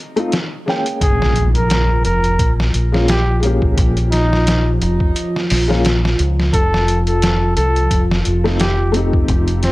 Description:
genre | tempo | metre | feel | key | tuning
trip hop | 87 BPM | 4/4 | swing 56% on 16ths | Bb dorian | A4 = 440 Hz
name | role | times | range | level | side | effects
felt-muted upright piano | accompaniment | 0.0-9.7 s | Ab3 to G5 | -21 LUFS | left 2 dB | tremolo
trip hop sampler-style drum kit | drums | 0.2-9.7 s | hi-hat, kick drum, snare drum | -19 LUFS | equal | none
trumpet with bucket mute | melody | 1.0-9.7 s | C4 to Bb4 | -22 LUFS | equal | tape echo
dark analog pad | sustained chords | 1.0-9.7 s | F3 to F4 | -22 LUFS | equal | chorus, vintage 12-bit sampler grit
deep dub fingered electric bass | bass | 1.0-9.7 s | F1 to Db2 | -17 LUFS | equal | none
impact | sound effects | 1.0-3.8 s | none | -24 LUFS | equal | none
room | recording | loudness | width
digital ambience | none | -13 LUFS | side -19 dB against mid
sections
0.0-1.0 A section; 1.0-9.7 B section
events
break 0.0-1.0; impact 1.0-3.8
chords
0.0 F7; 1.0 Bbm7; 6.5 F7

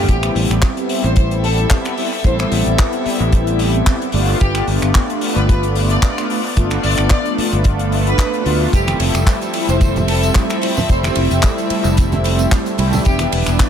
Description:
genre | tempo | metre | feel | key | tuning
nu-disco, nu disco | 111 BPM | 4/4 | swing 54% on 16ths | A minor | A4 = 442 Hz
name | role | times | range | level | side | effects
mellow synth brass | accompaniment | 0.0-13.7 s | G3 to F4 | -19 LUFS | equal | chorus, dub echo
rich chamber string section | sustained chords | 0.0-13.7 s | F3 to E5 | -26 LUFS | left 2 dB | vintage 12-bit sampler grit, sidechain pumping
damped 70s drum kit | drums | 0.0-13.7 s | finger snaps, handclaps, hi-hat, ride cymbal, toms | -23 LUFS | left 1 dB | studio ambience, dub echo
warm symphonic violin section | melody | 0.1-13.2 s | G4 to D5 | -25 LUFS | equal | dub echo
fingered electric bass | bass | 0.1-13.6 s | E1 to D2 | -18 LUFS | equal | tube saturation, sidechain pumping
kick drum | drums | 0.1-13.7 s | none | -14 LUFS | equal | studio ambience
tambourine and congas | percussion | 8.7-13.7 s | none | -26 LUFS | right 3 dB | dub echo
room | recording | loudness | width
light reverb | echo-heavy mix | -14 LUFS | side -8 dB against mid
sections
0.1-13.7 A section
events
drop 0.1-13.7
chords
0.1 Am7; 4.1 G7; 8.7 Fmaj7; 13.1 Em7

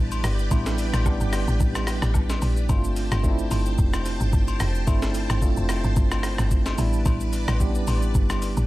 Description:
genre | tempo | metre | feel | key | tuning
amapiano | 110 BPM | 4/4 | swing 55% on 16ths | unclear | A4 = 441 Hz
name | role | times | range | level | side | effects
tine electric piano | accompaniment | 0.0-8.7 s | G3 to B5 | -29 LUFS | right 2 dB | fast stereo tremolo
string machine, violins | sustained chords | 0.0-8.7 s | G4 to A5 | -35 LUFS | equal | ensemble chorus, sidechain pumping
woody log drum bass | bass | 0.0-8.7 s | F1 to Bb1 | -24 LUFS | equal | none
breakbeat sampler-style drum kit | drums | 0.1-8.7 s | hi-hat, kick drum, rim click, shaker, snare drum | -25 LUFS | equal | none
agogo bells and woodblock | percussion | 0.1-8.4 s | none | -37 LUFS | left 6 dB | none
room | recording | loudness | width
digital ambience | none | -20 LUFS | side -17 dB against mid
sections
0.0-8.7 A section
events
none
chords
0.0 A9sus4; 2.7 G9sus4; 6.8 A9sus4

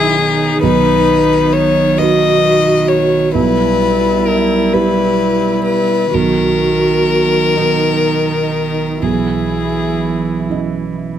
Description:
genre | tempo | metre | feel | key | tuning
neoclassical piano and strings | 40-45 BPM (dotted quarters) | 6/8 | rubato | B major | A4 = 439 Hz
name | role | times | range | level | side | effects
warm violin | melody | 0.0-10.5 s | G#4 to D#5 | -15 LUFS | left 5 dB | none
warm cello | second line | 0.0-11.2 s | D#3 to G3 | -18 LUFS | right 5 dB | none
dark viola | accompaniment | 0.0-11.2 s | D#4 to F#4 | -19 LUFS | right 2 dB | none
felt-muted upright piano | accompaniment | 0.0-11.2 s | B1 to D#5 | -19 LUFS | right 4 dB | none
room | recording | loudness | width
light reverb | close, detailed microphones | -11 LUFS | side -10 dB against mid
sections
0.0-11.2 A section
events
none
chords
0.0 C#madd9/B; 0.6 B; 3.3 Em/B; 6.1 B; 9.0 C#madd9/B

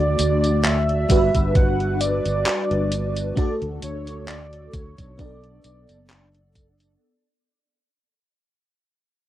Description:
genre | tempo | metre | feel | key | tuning
vaporwave | 66 BPM | 4/4 | swing 55% on 16ths | unclear | A4 = 441 Hz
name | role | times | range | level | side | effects
warm velvety synth lead | melody | 0.0-6.6 s | C#5 to F#5 | -26 LUFS | right 1 dB | chorus, vintage 12-bit sampler grit, tape echo
FM electric piano with soft pad layer | accompaniment | 0.0-7.0 s | G3 to D5 | -24 LUFS | right 1 dB | ensemble chorus
sustaining fretless electric bass | bass | 0.0-7.0 s | F#1 to D2 | -24 LUFS | equal | none
gated 80s digital drum machine | drums | 0.2-7.0 s | handclaps, hi-hat, tambourine | -26 LUFS | equal | gated reverb
electronic kick drum | drums | 1.1-6.8 s | none | -20 LUFS | equal | none
room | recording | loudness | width
little or no reverb | rough home demo mix | -18 LUFS | side -13 dB against mid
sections
0.0-7.0 A section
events
fade-out 0.0-7.0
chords
0.0 D; 1.1 Gmaj7; 3.4 D; 5.2 Bm7

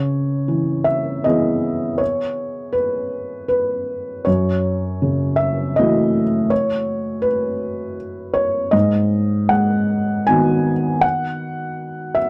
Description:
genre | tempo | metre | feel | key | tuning
neoclassical minimalist piano | 80 BPM | 3/4 | rubato | C# minor | A4 = 439 Hz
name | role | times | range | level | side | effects
felt-muted upright piano | solo | 0.0-12.3 s | F#2 to G#5 | -20 LUFS | equal | none
room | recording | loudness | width
light reverb | dry, close 1970s-style studio recording | -19 LUFS | mono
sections
0.0-12.3 A section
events
none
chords
0.0 C#m7; 4.3 F#m7; 8.7 G#m7

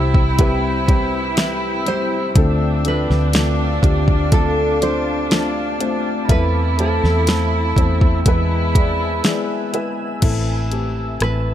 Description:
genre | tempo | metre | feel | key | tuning
pop ballad | 61 BPM | 4/4 | straight | A minor | A4 = 439 Hz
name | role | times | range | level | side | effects
warm studio cello section | second line | 0.0-9.7 s | D4 to E4 | -24 LUFS | right 2 dB | none
felt-muted upright piano | accompaniment | 0.0-11.5 s | A2 to E5 | -24 LUFS | left 4 dB | none
shimmering ambient pad | sustained chords | 0.0-11.5 s | C4 to E6 | -27 LUFS | equal | chorus, built-in reverb
vintage muted fingered electric bass | bass | 0.0-11.5 s | A1 to E2 | -20 LUFS | equal | none
smooth R&B drum kit | drums | 0.1-11.4 s | crash cymbal, hi-hat, kick drum, rim click, snare drum | -17 LUFS | equal | none
nylon-string guitar | melody | 1.4-11.5 s | A4 to C5 | -24 LUFS | right 1 dB | none
room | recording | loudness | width
small room ambience | dark, warm production | -15 LUFS | side -11 dB against mid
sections
0.0-10.2 A section; 10.2-11.5 B section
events
none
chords
0.0 C; 2.4 Dm7; 6.3 Am/E; 8.3 E; 10.2 Am

